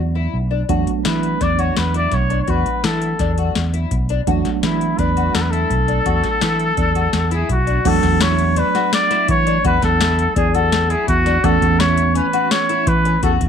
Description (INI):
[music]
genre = progressive instrumental, band music in an uneven meter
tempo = 167 BPM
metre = 5/4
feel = straight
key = unclear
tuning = A4 = 440 Hz
[part]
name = tine electric piano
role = accompaniment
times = 0.0-13.5 s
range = E3 to D4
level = -24 LUFS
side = right 16 dB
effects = overdrive, fast stereo tremolo
[part]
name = fretless electric bass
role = bass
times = 0.0-13.5 s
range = B1 to E3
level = -19 LUFS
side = right 1 dB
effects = analog chorus
[part]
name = fingerpicked twelve-string acoustic guitar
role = arpeggios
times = 0.2-13.4 s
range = C#4 to F#4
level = -25 LUFS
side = left 13 dB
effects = none
[part]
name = booming analog drum machine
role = drums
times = 0.7-13.5 s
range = crash cymbal, hi-hat, kick drum, snare drum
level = -22 LUFS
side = left 1 dB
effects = overdrive
[part]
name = mellow trumpet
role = melody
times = 1.1-13.3 s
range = E4 to D5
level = -19 LUFS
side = left 1 dB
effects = none
[sound]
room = light reverb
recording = 1960s-style stereo with parts hard left and right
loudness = -15 LUFS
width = side -8 dB against mid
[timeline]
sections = 0.0-7.9 A section; 7.9-13.5 B section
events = none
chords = 0.0 E9sus4; 7.9 E7sus4; 11.4 Aadd9/E